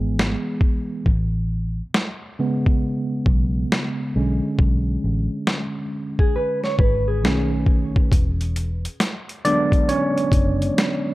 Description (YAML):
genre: lo-fi hip hop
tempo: 68 BPM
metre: 4/4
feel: swing 64% on 16ths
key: B dorian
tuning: A4 = 440 Hz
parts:
  - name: barky tine electric piano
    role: accompaniment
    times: 0.0-11.1 s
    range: C#3 to D5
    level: -23 LUFS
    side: right 1 dB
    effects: medium stereo tremolo, low-pass filter
  - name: vintage muted fingered electric bass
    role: bass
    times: 0.0-10.7 s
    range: E1 to B1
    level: -22 LUFS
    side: equal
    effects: none
  - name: boom bap sampler-style drum kit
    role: drums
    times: 0.2-11.0 s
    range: hi-hat, kick drum, snare drum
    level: -20 LUFS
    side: equal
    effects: none
  - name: mellow electric guitar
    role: second line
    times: 6.2-7.5 s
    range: G#4 to C#5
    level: -26 LUFS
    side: equal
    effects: low-pass filter, tape echo
room: light reverb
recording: none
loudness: -19 LUFS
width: side -18 dB against mid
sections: 0.0-11.1 A section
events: break 0.0-8.1; tine electric piano solo 0.0-11.1; hi-hats muted 4.6-8.1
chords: 0.0 C#m7 (rootless); 1.1 Amaj9; 4.1 Bm69; 7.2 B7; 8.1 E13